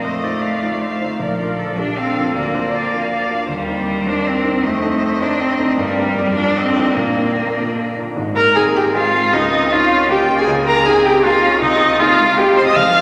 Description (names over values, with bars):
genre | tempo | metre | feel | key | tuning
quick classical-period movement for piano quartet | 157 BPM | 3/4 | straight | Bb major, Ab major from 8.2 s | A4 = 440 Hz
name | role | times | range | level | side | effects
rich violin | melody | 0.0-13.0 s | C5 to F6 | -24 LUFS | equal | none
clear cello | second line | 0.0-13.0 s | F3 to D4 | -22 LUFS | equal | none
rich viola | accompaniment | 0.0-13.0 s | Eb4 to F5 | -19 LUFS | equal | none
warm grand piano | accompaniment | 0.0-13.0 s | F1 to C5 | -26 LUFS | equal | none
room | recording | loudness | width
wet cathedral reverb, RT60 4.3 s | none | -16 LUFS | mono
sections
0.0-8.2 A section; 8.2-13.0 B section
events
none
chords
0.0 F7; 1.2 Bb; 2.3 Bb/D; 3.5 Cm7/Eb; 4.6 F7; 5.8 Gm; 6.2 Bb/F; 6.6 F7; 7.0 Bb; 8.2 Ab; 9.3 Bbm/Db; 11.6 Ab/C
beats
| 0.04 0.42 0.81 | 1.20 1.58 1.97 | 2.35 2.73 3.11 | 3.50 3.88 4.26 | 4.64 5.02 5.40 | 5.79 6.17 6.56 | 6.97 7.37 7.77 | 8.17 8.55 8.94 | 9.33 9.71 10.10 | 10.48 10.86 11.24 | 11.62 12.00 12.38 | 12.76